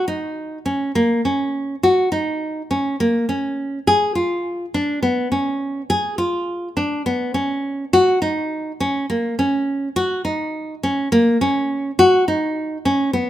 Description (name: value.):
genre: contemporary instrumental, chamber music in an uneven meter.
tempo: 207 BPM (eighths).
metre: 7/8.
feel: straight.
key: unclear.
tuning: A4 = 439 Hz.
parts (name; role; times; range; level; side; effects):
nylon-string guitar; solo; 0.0-13.3 s; A#3 to G#4; -18 LUFS; equal; none.
room: light reverb.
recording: close, detailed microphones.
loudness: -18 LUFS.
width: side -12 dB against mid.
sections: 0.0-13.3 A section.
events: none.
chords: none.